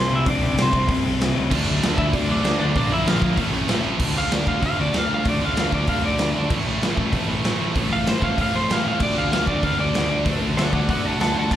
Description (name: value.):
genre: punk rock.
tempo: 192 BPM.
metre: 4/4.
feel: straight.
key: D major from 4.0 s.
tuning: A4 = 440 Hz.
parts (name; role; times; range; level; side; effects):
lightly driven lead guitar; melody; 0.0-11.6 s; C4 to A5; -25 LUFS; equal; slapback echo, digital delay.
sludgy distorted guitar; riff; 0.0-11.6 s; A2 to G4; -27 LUFS; left 7 dB; overdrive, slapback echo.
sludgy distorted guitar; riff; 0.0-11.6 s; A2 to D4; -30 LUFS; right 1 dB; overdrive.
fuzz picked electric bass; bass; 0.0-11.6 s; A1 to D3; -26 LUFS; equal; overdrive.
raw garage drum kit; drums; 0.3-11.6 s; crash cymbal, hi-hat, kick drum, snare drum; -24 LUFS; equal; none.
tight distorted guitar; riff; 1.5-11.6 s; A2 to D4; -28 LUFS; right 9 dB; distortion, slapback echo.
room: little or no reverb.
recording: live gig heard through the venue's PA, club reverb.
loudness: -18 LUFS.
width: side -11 dB against mid.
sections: 0.0-4.0 A section; 4.0-11.6 B section.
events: lead electric guitar solo 4.0-11.6.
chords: 0.0 C; 1.5 D; 2.8 Bb; 3.4 A; 4.0 D; 6.5 A; 9.0 D.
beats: | 0.26 0.57 0.88 1.20 | 1.51 1.82 2.13 2.45 | 2.76 3.07 3.38 3.69 | 4.01 4.32 4.63 4.95 | 5.26 5.57 5.88 6.20 | 6.51 6.82 7.13 7.45 | 7.76 8.07 8.38 8.70 | 9.01 9.32 9.64 9.95 | 10.26 10.58 10.89 11.20 | 11.52.